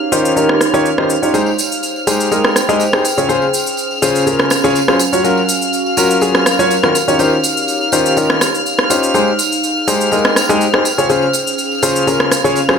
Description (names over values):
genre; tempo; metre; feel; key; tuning
piano house; 123 BPM; 4/4; swing 53% on 16ths; unclear; A4 = 441 Hz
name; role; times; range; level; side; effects
warm studio violin section; sustained chords; 0.0-12.8 s; F6; -20 LUFS; left 1 dB; low-pass filter
warbly tape-like pad; texture; 0.0-12.8 s; Db4 to G5; -20 LUFS; right 1 dB; chorus, built-in reverb
clear concert grand piano; riff; 0.1-12.8 s; Db3 to Eb5; -14 LUFS; left 1 dB; tape echo
electronic shaker and rim click; drums; 0.1-12.8 s; none; -17 LUFS; right 1 dB; overdrive
tambourine; percussion; 1.3-12.8 s; none; -24 LUFS; right 6 dB; none
room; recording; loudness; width
moderate plate reverb, RT60 1.2 s, small room ambience; none; -11 LUFS; side -6 dB against mid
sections
0.0-12.8 A section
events
none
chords
0.0 Eb13; 1.3 Abmaj7; 3.0 Dbmaj7; 5.0 Gbmaj7; 6.9 Eb13; 9.1 Abmaj7; 10.9 Dbmaj7